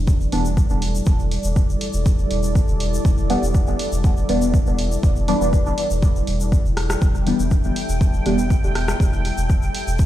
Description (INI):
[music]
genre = dub techno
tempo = 121 BPM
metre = 4/4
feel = straight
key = E minor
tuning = A4 = 437 Hz
[part]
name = deep dark ambient pad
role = sustained chords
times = 0.0-10.1 s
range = G3 to G5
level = -27 LUFS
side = equal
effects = chorus, built-in reverb, sidechain pumping
[part]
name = warm sub bass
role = bass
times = 0.0-10.1 s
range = E1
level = -23 LUFS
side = equal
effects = sidechain pumping
[part]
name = electronic kick drum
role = drums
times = 0.1-10.1 s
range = none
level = -18 LUFS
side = equal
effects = overdrive
[part]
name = egg shaker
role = percussion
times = 0.1-10.1 s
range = none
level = -36 LUFS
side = left 4 dB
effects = none
[part]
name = deep mellow chord stab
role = stabs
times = 0.3-8.4 s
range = E3 to D4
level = -24 LUFS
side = left 1 dB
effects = chorus, phaser, sidechain pumping, dub echo
[part]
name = punchy analog drum machine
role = drums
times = 0.3-9.8 s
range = hi-hat, rim click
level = -29 LUFS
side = equal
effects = none
[sound]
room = light reverb, digital ambience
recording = played on a big sound system in a bare room, stone room reverb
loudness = -17 LUFS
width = side -13 dB against mid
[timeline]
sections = 0.0-10.1 A section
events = none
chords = 0.0 Em7